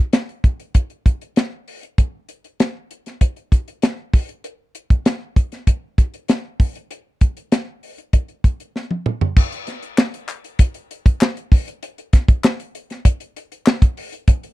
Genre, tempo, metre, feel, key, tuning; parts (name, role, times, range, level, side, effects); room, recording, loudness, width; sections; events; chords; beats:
pop; 98 BPM; 4/4; straight
tight funk drum kit; drums; 0.1-14.5 s; crash cymbal, hi-hat, kick drum, snare drum, toms; -14 LUFS; equal
group handclap; percussion; 10.0-13.8 s; -26 LUFS; left 6 dB
little or no reverb; dry, close 1970s-style studio recording; -17 LUFS; side -18 dB against mid
0.0-9.4 A section; 9.4-14.5 B section
drum fill 8.8-9.4
0.14 0.75 1.37 | 1.98 2.60 3.21 3.83 | 4.44 5.06 5.67 6.29 | 6.91 7.52 8.14 8.75 | 9.37 9.98 10.60 11.21 | 11.82 12.44 13.05 13.66 | 14.28